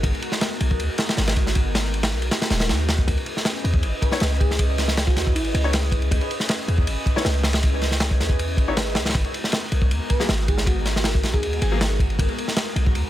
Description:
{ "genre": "drum and bass, jungle", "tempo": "158 BPM", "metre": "4/4", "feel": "straight", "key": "C# dorian", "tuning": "A4 = 438 Hz", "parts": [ { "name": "airy breathy pad", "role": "sustained chords", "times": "0.0-13.1 s", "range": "G#3 to D#5", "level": "-29 LUFS", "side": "equal", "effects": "chorus, phaser" }, { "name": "warm 808-style bass", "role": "bass", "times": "0.0-13.0 s", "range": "D#1 to E2", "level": "-23 LUFS", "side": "equal", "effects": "none" }, { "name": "crunchy breakbeat drum kit", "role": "drums", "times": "0.0-13.0 s", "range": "kick drum, ride cymbal, snare drum", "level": "-22 LUFS", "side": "equal", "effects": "none" }, { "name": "bell-like FM electric piano", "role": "melody", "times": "4.0-5.7, 10.1-12.0 s", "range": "E4 to B4", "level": "-31 LUFS", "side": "right 2 dB", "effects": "chorus, tremolo, dub echo" }, { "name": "clear grand piano", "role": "stabs", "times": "4.1-11.8 s", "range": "F#3 to C#5", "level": "-30 LUFS", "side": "left 4 dB", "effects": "dub echo" } ], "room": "small room ambience", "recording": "none", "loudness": "-19 LUFS", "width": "side -13 dB against mid", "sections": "0.0-13.1 A section", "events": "none", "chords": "0.0 G#m9; 3.1 C#m9; 9.2 G#m9" }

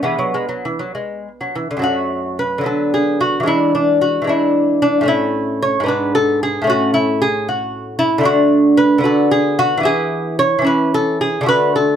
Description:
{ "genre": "classical, baroque-style dance for lute", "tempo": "74 BPM (dotted quarters)", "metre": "6/8", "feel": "rubato", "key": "unclear", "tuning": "A4 = 436 Hz", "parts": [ { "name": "lute", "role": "solo", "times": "0.0-12.0 s", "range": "F#2 to C#5", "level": "-14 LUFS", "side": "equal", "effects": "none" } ], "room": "light reverb", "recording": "faint mains hum", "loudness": "-14 LUFS", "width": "side -9 dB against mid", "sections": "0.0-1.8 A section; 1.8-12.0 B section", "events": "none", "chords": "0.0 E; 1.8 F#m; 2.7 Bm/D; 3.5 E7; 5.1 A; 5.9 G#dim; 6.7 A; 8.2 D; 9.0 Bm/D; 9.9 E; 10.7 C#m/E" }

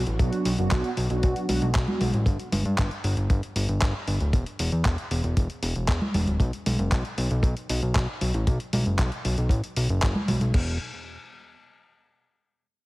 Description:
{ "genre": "italo disco", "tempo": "116 BPM", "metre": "4/4", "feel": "straight", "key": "unclear", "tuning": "A4 = 440 Hz", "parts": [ { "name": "fat analog bass", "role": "bass", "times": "0.0-10.8 s", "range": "D1 to G2", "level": "-26 LUFS", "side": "equal", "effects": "none" }, { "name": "dusty soul sampler-style drum kit", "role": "drums", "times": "0.1-10.6 s", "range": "congas, crash cymbal, handclaps, hi-hat", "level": "-30 LUFS", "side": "equal", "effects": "studio reverb" }, { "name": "mellow synth brass", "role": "stabs", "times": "0.2-2.1 s", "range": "F#3 to F#4", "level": "-28 LUFS", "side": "right 2 dB", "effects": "chorus, digital delay" }, { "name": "kick drum", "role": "drums", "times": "0.2-10.6 s", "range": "none", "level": "-23 LUFS", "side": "equal", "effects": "studio reverb" } ], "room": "light reverb, small room reverb", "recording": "heavily compressed radio sound", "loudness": "-23 LUFS", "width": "side -20 dB against mid", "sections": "0.0-10.5 A section; 10.5-12.6 B section", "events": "none", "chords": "0.0 Bm; 2.3 G5; 4.3 N.C.; 6.4 B5; 10.5 N.C." }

